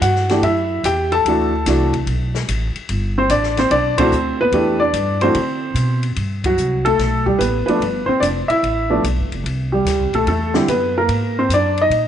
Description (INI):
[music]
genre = jazz piano trio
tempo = 146 BPM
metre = 4/4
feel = swing 67% on 8ths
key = G major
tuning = A4 = 439 Hz
[part]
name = warm upright piano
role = melody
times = 0.0-12.1 s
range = D3 to A5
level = -16 LUFS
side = equal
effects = none
[part]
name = upright bass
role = bass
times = 0.0-12.1 s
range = F1 to D3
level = -21 LUFS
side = equal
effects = none
[part]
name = open jazz drum kit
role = drums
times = 0.0-12.0 s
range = hi-hat, kick drum, ride cymbal, snare drum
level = -28 LUFS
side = left 4 dB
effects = none
[sound]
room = moderate plate reverb, RT60 1.7 s, studio ambience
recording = 1960s-style stereo, nothing above 10.5 kHz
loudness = -15 LUFS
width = side -9 dB against mid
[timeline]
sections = 0.0-6.2 A section; 6.2-12.1 B section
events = band accent 3.9, 6.4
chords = 0.0 A5; 1.3 D9; 2.9 G; 4.5 Am9; 5.4 Csus2; 6.2 Gmaj7; 7.8 G9; 9.5 Cmaj7; 11.1 Ab7#11